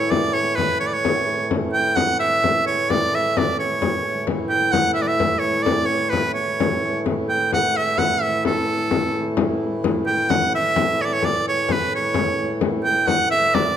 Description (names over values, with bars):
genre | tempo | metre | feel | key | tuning
medieval dance | 86 BPM (dotted quarters) | 6/8 | straight | A mixolydian | A4 = 439 Hz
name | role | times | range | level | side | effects
bright shawm | melody | 0.0-13.8 s | A4 to G5 | -20 LUFS | right 2 dB | none
hand-pumped harmonium | drone | 0.0-13.8 s | A2 to E3 | -26 LUFS | equal | none
frame drum | percussion | 0.1-13.8 s | none | -24 LUFS | left 5 dB | none
room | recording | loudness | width
wet recital hall reverb, RT60 1.5 s | none | -18 LUFS | side -9 dB against mid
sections
0.0-9.8 A section; 9.8-13.8 A section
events
none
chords
none